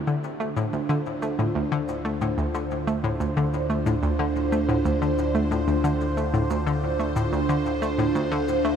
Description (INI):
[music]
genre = ambient, sequencer-driven space music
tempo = 91 BPM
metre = 4/4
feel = straight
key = D minor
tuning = A4 = 440 Hz
[part]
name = phased analog pad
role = sustained chords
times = 0.0-8.8 s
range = D3 to C5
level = -26 LUFS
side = right 1 dB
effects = phaser, chorus
[part]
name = round analog bass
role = bass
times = 0.0-8.8 s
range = D2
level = -31 LUFS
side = equal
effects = none
[part]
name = analog pluck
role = riff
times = 0.1-8.7 s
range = D2 to A3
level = -25 LUFS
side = left 1 dB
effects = chorus, ping-pong delay
[part]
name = shaker and woodblock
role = percussion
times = 0.1-8.8 s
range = none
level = -54 LUFS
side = left 2 dB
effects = ping-pong delay
[sound]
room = moderate huge ambient reverb, RT60 7.9 s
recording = none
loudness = -22 LUFS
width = side -8 dB against mid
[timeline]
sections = 0.0-8.8 A section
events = fade-in on drum 0.0-8.8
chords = 0.0 Dm7